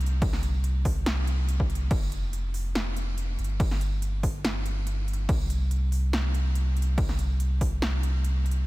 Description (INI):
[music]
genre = future bass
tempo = 142 BPM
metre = 4/4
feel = swing 53% on 16ths, half-time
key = unclear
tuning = A4 = 439 Hz
[part]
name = saturated sub bass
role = bass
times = 0.0-8.7 s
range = F1 to C2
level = -26 LUFS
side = equal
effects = sidechain pumping
[part]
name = big-room dance drum kit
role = drums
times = 0.0-8.6 s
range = crash cymbal, hi-hat, snare drum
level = -34 LUFS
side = equal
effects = overdrive
[part]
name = electronic kick drum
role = drums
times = 0.2-7.7 s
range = none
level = -27 LUFS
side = equal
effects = overdrive
[sound]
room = little or no reverb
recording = none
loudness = -24 LUFS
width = side -19 dB against mid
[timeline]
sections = 0.0-8.7 A section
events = drop 0.0-8.7; kick drops out 8.2-8.7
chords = none